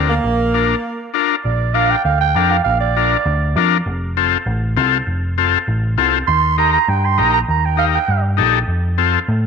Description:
latin; 199 BPM; 4/4; straight; Bb major; A4 = 440 Hz
mellow saxophone section; melody; 0.0-1.1 s; Bb3; -19 LUFS; right 3 dB
combo organ; accompaniment; 0.0-9.2 s; C4 to Bb4; -18 LUFS; left 11 dB
hollow-body short-scale picked electric bass; bass; 0.0-9.5 s; F1 to A2; -18 LUFS; equal
growling clarinet; second line; 1.4-3.7, 6.3-8.2 s; D5 to C6; -17 LUFS; right 8 dB
wet spring reverb, RT60 1.8 s, small room ambience; 1960s-style stereo with parts hard left and right; -14 LUFS; side -6 dB against mid
0.0-1.4 A section; 1.4-9.5 B section
break 0.8-1.4; clarinet solo 1.4-9.5
0.0 Bb; 3.9 F; 6.3 Eb; 8.7 F

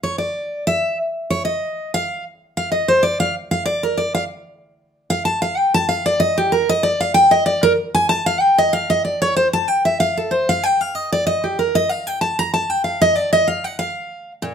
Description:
bluegrass; 190 BPM; 4/4; swing 54% on 8ths; A4 = 440 Hz
picked steel-string acoustic guitar; solo; 0.0-14.5 s; Bb2 to Bb5; -16 LUFS; equal
wet studio reverb, RT60 0.8 s; -16 LUFS; side -7 dB against mid
0.0-4.3 A section; 4.3-14.4 A section
steel-string acoustic guitar solo 0.0-14.4

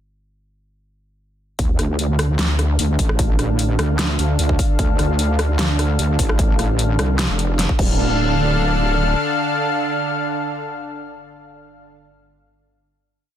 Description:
heavy wobble dubstep; 150 BPM; 4/4; half-time; D minor; A4 = 440 Hz
lush unison pad; sustained chords; 1.6-11.9 s; D3 to F5; -22 LUFS; equal; chorus, sidechain pumping
wobble bass; bass; 1.6-9.1 s; D1 to D2; -18 LUFS; equal; chorus, overdrive
dubstep drum kit; drums; 1.6-7.9 s; crash cymbal, hi-hat, rim click, snare drum; -24 LUFS; left 1 dB
electronic kick drum; drums; 1.6-7.9 s; -19 LUFS; equal; overdrive
zap; sound effects; 7.8-7.9 s; -28 LUFS; equal
little or no reverb; dense, heavily limited modern master, faint mains hum; -16 LUFS; side -10 dB against mid
1.6-8.0 drop; 8.0-11.2 final hit
drop 1.6-8.0
1.6 Dm

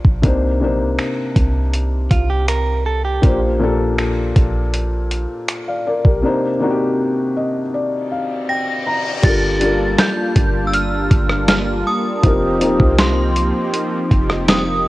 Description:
contemporary R&B; 80 BPM; 4/4; straight; A4 = 440 Hz
felt-muted upright piano; accompaniment; 0.0-14.9 s; Bb2 to Bb5; -20 LUFS; left 2 dB
warm 808-style bass; bass; 0.0-14.9 s; Eb1 to C2; -20 LUFS; equal
dusty soul sampler-style drum kit; drums; 0.0-14.7 s; crash cymbal, finger snaps, hi-hat, kick drum, rim click, snare drum; -16 LUFS; equal
direct-recorded clean electric guitar; arpeggios; 2.1-3.4 s; F4 to Bb4; -22 LUFS; right 4 dB; analog delay
reverse cymbal; sound effects; 8.0-9.2 s; -30 LUFS; left 4 dB
synth chime; melody; 8.5-14.9 s; C6 to Bb6; -22 LUFS; right 1 dB; ensemble chorus, cassette tape
warm analog pad; sustained chords; 9.2-14.9 s; F3 to A5; -21 LUFS; equal; chorus
light reverb; home recording on cassette; -15 LUFS; side -18 dB against mid
0.0-9.2 A section; 9.2-14.9 B section
felt piano fill 7.0-9.2; reverse cymbal 8.0-9.2
0.2 Cm9; 3.2 Bb6; 6.2 Cm9; 9.2 Gm9; 12.2 F9sus4

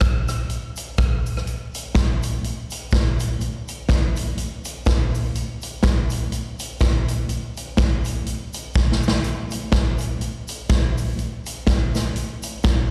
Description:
ska; 124 BPM; 4/4; swing 57% on 8ths
swinging big-band drum kit; drums; 0.0-12.8 s; hi-hat, kick drum, rim click, snare drum; -23 LUFS; equal
cabasa; percussion; 0.0-12.8 s; -43 LUFS; equal
little or no reverb; live gig heard through the venue's PA, recital hall reverb; -23 LUFS; mono
0.0-12.9 A section
drum fill 8.8-9.2

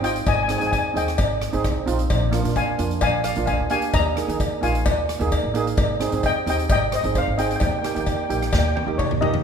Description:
calypso; 131 BPM; 4/4; straight; Ab major; A4 = 440 Hz
steel pan; melody; 0.0-9.4 s; C5 to Bb5; -24 LUFS; left 3 dB
steel pan; accompaniment; 0.0-9.4 s; Bb3 to Ab4; -26 LUFS; right 6 dB
upright bass; bass; 0.0-9.4 s; Ab1 to Eb3; -25 LUFS; equal
street-band drum kit; drums; 0.0-9.4 s; hi-hat, kick drum, rim click, snare drum, toms; -26 LUFS; equal
cowbell; percussion; 0.3-9.1 s; -28 LUFS; left 2 dB
light reverb; minimal, uncompressed stereo recording; -19 LUFS; side -7 dB against mid
0.0-9.4 A section
drum fill 8.5-9.4
0.0 Abmaj7; 2.1 Bb7; 3.9 Ebsus4; 5.8 Abmaj7; 7.6 Eb

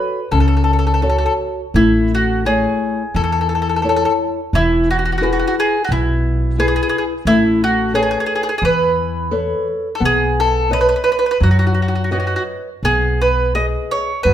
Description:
italian folk, Italian serenade; 86 BPM; 4/4; swing 54% on 8ths, rubato; A4 = 443 Hz
bowl-back mandolin; melody; 0.0-14.3 s; E4 to D#5; -17 LUFS; right 1 dB
nylon-string guitar; accompaniment; 0.0-14.3 s; B2 to D#5; -20 LUFS; left 4 dB
upright bass; bass; 0.3-14.3 s; E1 to F#2; -19 LUFS; right 1 dB
light reverb; minimal, uncompressed stereo recording; -14 LUFS; side -10 dB against mid
0.0-14.3 A section
0.0 F#m; 1.7 A; 4.5 E; 7.3 Aadd9; 10.0 Badd9; 12.8 B6

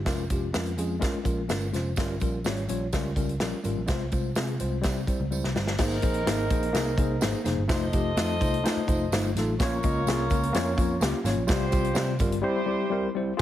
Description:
uptempo 1960s-style soul; 126 BPM; 4/4; straight; F minor; A4 = 440 Hz
vintage muted picked electric bass; bass; 0.0-13.4 s; F1 to C3; -30 LUFS; right 1 dB
tine electric piano; accompaniment; 0.1-13.4 s; G3 to Eb5; -29 LUFS; left 2 dB; medium stereo tremolo
natural country drum kit; drums; 0.1-13.4 s; crash cymbal, hi-hat, kick drum, snare drum; -28 LUFS; equal
tambourine; percussion; 0.1-12.3 s; -44 LUFS; right 8 dB
warm horn section; second line; 5.8-13.4 s; C4 to Eb5; -31 LUFS; equal
congas; percussion; 5.8-13.4 s; -41 LUFS; right 3 dB
little or no reverb; heavily compressed radio sound; -24 LUFS; side -12 dB against mid
0.0-5.8 A section; 5.8-13.4 B section
drum fill 5.3-5.8
0.1 Bbm7/F; 2.0 Gm7b5; 3.9 Fm/C; 4.8 C; 5.8 Abadd9; 7.7 F7; 9.6 Bbm; 11.5 Csus4; 12.4 C

